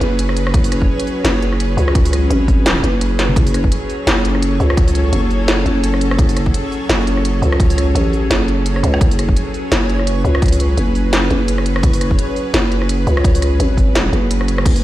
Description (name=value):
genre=half-time drum and bass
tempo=170 BPM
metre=4/4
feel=swing 57% on 16ths, half-time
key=F# minor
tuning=A4 = 441 Hz
part: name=bowed-like drone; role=sustained chords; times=0.0-14.8 s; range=F#3 to B4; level=-22 LUFS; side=equal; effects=built-in reverb, sidechain pumping
part: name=growling 808-style bass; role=bass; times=0.0-14.8 s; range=F#1 to C#2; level=-16 LUFS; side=equal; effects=none
part: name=industrial drum kit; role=drums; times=0.0-14.8 s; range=crash cymbal, hi-hat, rim click, snare drum, toms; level=-20 LUFS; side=equal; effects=none
part: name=backwards swelling texture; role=texture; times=0.0-14.7 s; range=C#5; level=-29 LUFS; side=equal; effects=built-in reverb
part: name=electronic kick drum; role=drums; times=0.5-14.7 s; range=none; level=-14 LUFS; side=equal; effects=overdrive
room=light reverb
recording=played on a big sound system in a bare room, stone room reverb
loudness=-13 LUFS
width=side -15 dB against mid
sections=0.0-14.7 A section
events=drop 0.0-14.7; drum fill 3.2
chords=0.0 F#m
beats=0.19 | 0.54 0.89 1.25 1.60 | 1.95 2.30 2.66 3.01 | 3.36 3.72 4.07 4.42 | 4.78 5.13 5.48 5.83 | 6.19 6.54 6.89 7.25 | 7.60 7.95 8.30 8.66 | 9.01 9.36 9.72 10.07 | 10.42 10.78 11.13 11.48 | 11.83 12.19 12.54 12.89 | 13.25 13.60 13.95 14.30 | 14.66